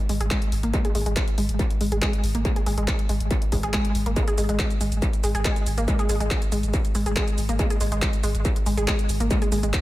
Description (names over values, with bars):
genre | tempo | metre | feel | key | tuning
driving peak-time techno | 140 BPM | 4/4 | straight | unclear | A4 = 440 Hz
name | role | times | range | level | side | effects
analog pluck | riff | 0.1-9.7 s | G#3 to G#4 | -27 LUFS | equal | chorus, overdrive, cassette tape, sidechain pumping, tape echo
saturated sub bass | bass | 0.1-9.7 s | G#1 | -27 LUFS | equal | tube saturation, sidechain pumping, low-pass filter
punchy analog drum machine | drums | 0.1-9.8 s | handclaps, hi-hat, shaker | -31 LUFS | equal | overdrive, sidechain pumping on hats, sidechain pumping on perc, dub echo
electronic kick drum | drums | 0.3-9.8 s | none | -24 LUFS | equal | distortion
room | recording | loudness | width
little or no reverb | echo-heavy mix | -21 LUFS | side -16 dB against mid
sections
0.0-9.8 A section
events
filter sweep on synth arpeggio sound 0.0-9.8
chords
0.0 G#5